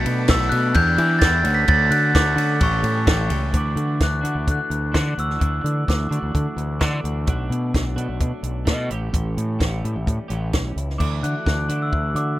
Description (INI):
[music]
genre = indie rock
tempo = 129 BPM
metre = 4/4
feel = straight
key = D major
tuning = A4 = 441 Hz
[part]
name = chorused pulse-width pad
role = sustained chords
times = 0.0-3.5, 11.0-12.4 s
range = F#4 to E6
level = -36 LUFS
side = equal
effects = none
[part]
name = electric guitar through a small old amp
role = riff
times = 0.0-12.4 s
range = A2 to B4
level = -34 LUFS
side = left 9 dB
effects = none
[part]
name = twelve-string electric guitar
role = riff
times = 0.0-12.4 s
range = E3 to G4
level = -31 LUFS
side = right 5 dB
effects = lush chorus
[part]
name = growling fingered electric bass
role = bass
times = 0.0-12.4 s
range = A1 to E3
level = -22 LUFS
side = equal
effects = overdrive
[part]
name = compact cocktail drum kit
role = drums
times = 0.1-12.3 s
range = crash cymbal, hi-hat, kick drum, ride cymbal, snare drum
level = -22 LUFS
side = equal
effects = none
[part]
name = glockenspiel with rubber mallets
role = melody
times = 0.3-7.0, 11.0-12.4 s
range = C#6 to B6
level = -23 LUFS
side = equal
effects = none
[part]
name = tine electric piano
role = second line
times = 0.3-3.3 s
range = C#4 to B4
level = -38 LUFS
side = right 4 dB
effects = none
[sound]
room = little or no reverb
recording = rough home demo mix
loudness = -18 LUFS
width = side -15 dB against mid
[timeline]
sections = 0.0-3.5 A section; 3.5-11.0 B section; 11.0-12.4 C section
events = none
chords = 0.0 Bm7; 0.8 Em7; 1.4 Dmaj7; 2.6 A7; 3.5 Dadd9; 7.3 Bm7; 8.9 A7; 11.0 Dadd9